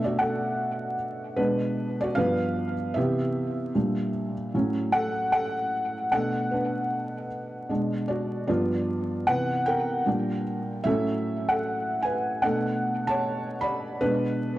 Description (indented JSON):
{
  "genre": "hip hop",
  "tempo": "76 BPM",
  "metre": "4/4",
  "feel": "swing 64% on 16ths",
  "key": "unclear",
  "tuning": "A4 = 440 Hz",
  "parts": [
    { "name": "felt-muted upright piano", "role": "solo", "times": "0.0-14.6 s", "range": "G2 to B5", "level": "-24 LUFS", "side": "equal", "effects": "tape echo" }
  ],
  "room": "moderate spring reverb, RT60 2.0 s, studio ambience",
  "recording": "dark, warm production, vinyl crackle",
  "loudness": "-24 LUFS",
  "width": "side -15 dB against mid",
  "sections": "0.0-14.6 A section",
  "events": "felt piano solo 0.0-14.6",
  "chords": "0.0 Bm7; 1.4 Bm6; 2.2 G7; 3.0 Cmaj7; 3.8 A#6; 4.5 A6; 6.1 Bm7; 7.7 Bm6; 8.5 G7; 9.3 Cmaj7; 10.1 A#6; 10.9 A69; 12.4 Bm9; 14.0 Bm6"
}